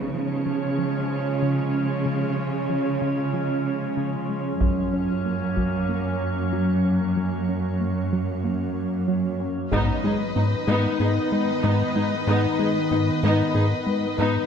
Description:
cinematic, hybrid orchestral and electronic film score; 94 BPM; 4/4; straight; G# dorian; A4 = 441 Hz
glassy FM pad; sustained chords; 0.0-14.5 s; D#3 to C#5; -26 LUFS; left 1 dB; ensemble chorus, built-in reverb
rich symphonic cello section; bass; 0.0-14.3 s; F#2 to C#3; -27 LUFS; right 4 dB
tight sequenced synth; arpeggios; 0.1-14.4 s; C#3 to D#4; -31 LUFS; equal; chorus, digital delay
taiko ensemble; drums; 4.6-5.9, 9.7-11.0 s; -27 LUFS; equal
warm symphonic violin section; second line; 9.7-14.5 s; B4 to D#5; -29 LUFS; left 5 dB
warm symphonic viola section; accompaniment; 9.7-14.5 s; B3 to G#4; -27 LUFS; equal
rubbery square bass; riff; 9.7-14.4 s; G#2 to G#3; -24 LUFS; left 2 dB
moderate scoring stage reverb, RT60 1.8 s; -21 LUFS; side -7 dB against mid
0.0-9.7 A section; 9.7-14.5 A section
0.0 C#; 4.6 F#; 9.7 G#m
0.14 0.78 1.42 | 2.06 2.70 3.34 3.98 | 4.61 5.25 5.89 6.53 | 7.17 7.80 8.44 9.08 | 9.72 10.36 11.00 11.63 | 12.27 12.91 13.55 14.19

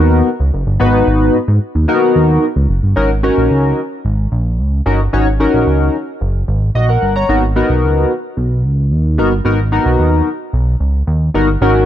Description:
early-eighties boogie funk; 111 BPM; 4/4; straight; G# minor; A4 = 440 Hz
chorused polysynth; accompaniment; 0.0-11.9 s; A#3 to A#5; -14 LUFS; left 1 dB
fat analog bass; bass; 0.0-11.8 s; F#1 to G#2; -13 LUFS; equal
light reverb, digital ambience; -12 LUFS; side -11 dB against mid
0.0-3.0 A section; 3.0-11.6 B section
0.0 G#m9; 3.0 D#m7; 7.3 G#m9
0.26 | 0.81 1.34 1.89 2.43 | 2.97 3.51 4.05 4.59 | 5.13 5.67 6.21 6.75 | 7.29 7.83 8.37 8.91 | 9.45 9.99 10.53 11.07 | 11.62

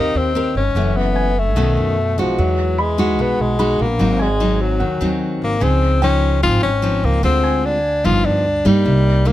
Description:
bossa nova; 148 BPM; 4/4; straight; A4 = 440 Hz
breathy tenor saxophone; melody; 0.0-9.3 s; F3 to F4; -19 LUFS; left 3 dB
nylon-string guitar; accompaniment; 0.0-9.3 s; Gb2 to Bb4; -20 LUFS; equal
warm concert grand piano; accompaniment; 0.0-8.1 s; Db5 to B5; -29 LUFS; right 2 dB
upright bass; bass; 0.0-9.3 s; Gb1 to G2; -19 LUFS; right 1 dB
little or no reverb; close, detailed microphones; -14 LUFS; side -14 dB against mid
0.0-9.3 A section
0.0 Abmaj9 (rootless); 0.8 Gbm7; 1.6 B9; 2.4 Emaj9; 4.0 Ab7; 5.6 Dbmaj9; 7.2 Dm7b5; 8.0 G7b13
0.35 | 0.76 1.17 1.57 1.98 | 2.38 2.79 3.19 3.60 | 4.00 4.41 4.81 5.21 | 5.62 6.02 6.43 6.83 | 7.24 7.64 8.05 8.45 | 8.86 9.26

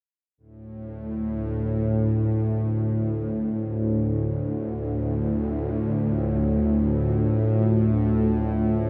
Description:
dark ambient drone; free time; A4 = 438 Hz
dark analog pad; sustained chords; 4.6-8.9 s; A3 to D5; -39 LUFS; equal
bowed-like drone; drone; 0.6-8.9 s; D2 to A2; -24 LUFS; equal; built-in reverb
wet plate reverb, RT60 2.6 s; -24 LUFS; mono
0.4-8.9 A section
0.4 Dm
free time

